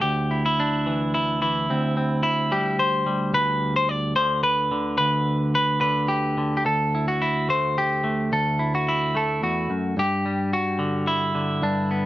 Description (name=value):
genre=folk, solo fingerstyle acoustic guitar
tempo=109 BPM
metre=3/4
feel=straight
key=unclear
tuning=A4 = 440 Hz
part: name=semi-hollow electric guitar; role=solo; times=0.0-12.1 s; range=D2 to D5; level=-20 LUFS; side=equal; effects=none
room=light reverb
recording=minimal, uncompressed stereo recording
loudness=-20 LUFS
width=side -15 dB against mid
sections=0.0-12.1 A section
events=none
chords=0.0 Cadd9/D; 3.3 N.C.; 6.7 Am/D; 10.0 G5